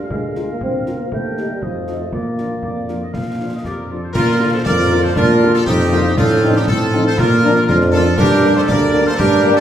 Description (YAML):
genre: military-style march for wind band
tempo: 119 BPM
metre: 2/4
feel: straight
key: Bb major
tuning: A4 = 440 Hz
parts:
  - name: warm euphonium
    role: second line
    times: 0.0-3.9 s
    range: F3 to C4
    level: -24 LUFS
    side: equal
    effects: none
  - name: warm woodwind section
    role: second line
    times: 0.0-9.5 s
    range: C4 to G5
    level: -22 LUFS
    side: left 1 dB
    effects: none
  - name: mellow tuba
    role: bass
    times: 0.0-9.6 s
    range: D2 to Bb2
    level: -18 LUFS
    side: right 1 dB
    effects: none
  - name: concert bass drum, concert snare drum and clash cymbals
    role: drums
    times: 0.1-9.6 s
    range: none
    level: -22 LUFS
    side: left 1 dB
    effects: none
  - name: clear trumpet section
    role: melody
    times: 0.3-9.6 s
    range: F4 to D5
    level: -21 LUFS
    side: equal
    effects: none
  - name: mellow French horn section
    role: accompaniment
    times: 0.4-9.5 s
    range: D3 to G4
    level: -23 LUFS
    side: left 2 dB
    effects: none
  - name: warm trombone section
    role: sustained chords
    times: 4.7-9.6 s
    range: Bb3 to F4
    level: -21 LUFS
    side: right 4 dB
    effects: none
room: wet recital hall reverb, RT60 1.7 s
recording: recorded in a church or concert hall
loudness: -13 LUFS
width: side -10 dB against mid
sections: 0.0-4.2 A section; 4.2-9.6 A section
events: none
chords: 0.0 Bb/D; 1.1 Eb; 1.6 F7; 2.1 Bb; 6.2 F7/A; 7.2 Bb; 8.2 Gm